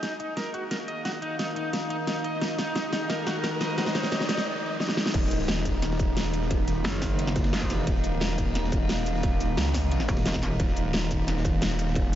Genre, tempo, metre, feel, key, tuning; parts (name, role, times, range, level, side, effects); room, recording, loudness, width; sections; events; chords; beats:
dark technical drum and bass; 176 BPM; 4/4; straight; Eb minor; A4 = 445 Hz
metallic inharmonic drone; sustained chords; 0.0-12.2 s; Eb3 to Eb4; -31 LUFS; equal; chorus, built-in reverb, sidechain pumping
electric guitar at the edge of break-up; arpeggios; 0.0-4.4 s; Eb4 to Eb5; -33 LUFS; equal; spring reverb, sidechain pumping, low-pass filter, diffuse ambient delay
dubstep drum kit; drums; 0.0-12.0 s; cabasa, crash cymbal, hi-hat, snare drum; -31 LUFS; equal
riser; sound effects; 1.9-4.5 s; -39 LUFS; equal
snarling distorted saw bass; bass; 5.1-12.2 s; Eb1 to Db2; -28 LUFS; equal; distortion, overdrive, sidechain pumping
crunchy breakbeat drum kit; drums; 5.1-12.2 s; ride cymbal, snare drum; -40 LUFS; equal
electronic kick drum; drums; 5.1-12.0 s; -28 LUFS; equal; distortion
metallic wobble bass; bass; 6.8-7.9, 10.1-10.6 s; Eb1 to Gb1; -28 LUFS; equal; chorus
moderate huge ambient reverb, RT60 4.7 s; dreamy mix soaked in reverb, nothing above 7.6 kHz; -24 LUFS; side -12 dB against mid
0.0-5.1 A section; 5.1-12.2 B section
build-up 0.0-5.1; drum fill 0.0-4.5, 4.8-5.1; filter sweep on synth drone 0.0-5.1; riser 1.9-4.5; drop 5.1-12.2
0.0 Eb5
0.03 0.37 0.71 | 1.05 1.39 1.73 2.08 | 2.42 2.76 3.10 3.44 | 3.78 4.12 4.46 4.80 | 5.14 5.48 5.83 6.17 | 6.51 6.85 7.19 7.53 | 7.87 8.21 8.55 8.89 | 9.23 9.57 9.91 10.26 | 10.60 10.94 11.28 11.62 | 11.96